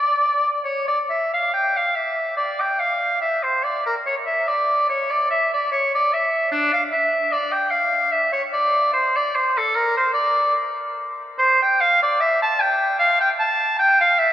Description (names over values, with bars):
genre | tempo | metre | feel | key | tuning
classical, baroque-style fantasia for unaccompanied oboe | 73 BPM | 3/4 | uneven beats, rubato | D minor | A4 = 440 Hz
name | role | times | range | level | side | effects
clear oboe | solo | 0.0-14.3 s | D4 to A5 | -17 LUFS | equal | none
room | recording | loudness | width
wet cathedral reverb, RT60 5.7 s | heard from further back in the room | -17 LUFS | side -12 dB against mid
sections
0.0-1.5 A section; 1.5-14.3 A section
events
none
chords
none